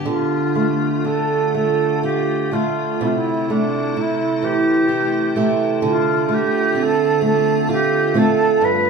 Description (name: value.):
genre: celtic folk, Celtic slow air.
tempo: 39-43 BPM (dotted quarters).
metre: 6/8.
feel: rubato.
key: D minor.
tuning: A4 = 437 Hz.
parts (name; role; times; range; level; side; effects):
picked steel-string acoustic guitar; accompaniment; 0.0-8.9 s; G2 to G4; -19 LUFS; right 3 dB; none.
icy glass pad; sustained chords; 0.0-8.9 s; C3 to G4; -25 LUFS; left 2 dB; chorus, built-in reverb.
wooden flute; melody; 0.1-8.9 s; D4 to B4; -20 LUFS; right 2 dB; none.
room: moderate large studio reverb, RT60 0.9 s.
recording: band playing live in one room.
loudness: -16 LUFS.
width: side -5 dB against mid.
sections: 0.0-8.9 A section.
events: none.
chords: 0.0 Dm; 3.0 C6; 5.8 Dm7.